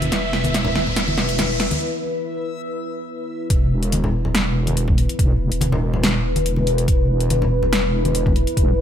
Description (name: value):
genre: deep dubstep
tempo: 142 BPM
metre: 4/4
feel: swing 53% on 16ths, half-time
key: unclear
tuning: A4 = 439 Hz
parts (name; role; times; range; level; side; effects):
- deep dark ambient pad; sustained chords; 0.0-8.8 s; E4 to B4; -25 LUFS; left 2 dB; chorus, built-in reverb
- wobble bass; bass; 0.0-8.8 s; E1; -21 LUFS; equal; chorus, tube saturation
- deep house drum kit; drums; 0.0-8.7 s; hi-hat, snare drum; -23 LUFS; equal; overdrive
- congas; percussion; 0.0-8.3 s; none; -26 LUFS; left 1 dB; dub echo
- riser; sound effects; 0.0-1.8 s; none; -27 LUFS; equal; none
- backwards swelling texture; texture; 0.0-1.8 s; E5; -30 LUFS; right 2 dB; built-in reverb
- electronic kick drum; drums; 3.5-8.7 s; none; -18 LUFS; equal; none
room: light reverb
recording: none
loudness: -17 LUFS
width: side -9 dB against mid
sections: 0.0-3.5 A section; 3.5-8.8 B section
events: build-up 0.0-3.5; drum fill 0.0-1.8; riser 0.0-1.8; break 1.8-3.5; drop 3.5-8.8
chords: 0.0 E5